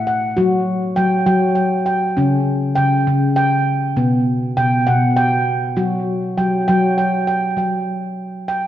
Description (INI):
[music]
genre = world meditative, meditative tuned percussion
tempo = 67 BPM (dotted quarters)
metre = 6/8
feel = straight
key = unclear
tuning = A4 = 440 Hz
[part]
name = handpan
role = solo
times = 0.0-8.7 s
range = A2 to G5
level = -15 LUFS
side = equal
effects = diffuse ambient delay
[sound]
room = wet recital hall reverb, RT60 1.5 s, studio ambience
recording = none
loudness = -15 LUFS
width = side -12 dB against mid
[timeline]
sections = 0.0-7.6 A section; 7.6-8.7 B section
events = none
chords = 0.4 N.C.; 4.0 B5; 5.8 N.C.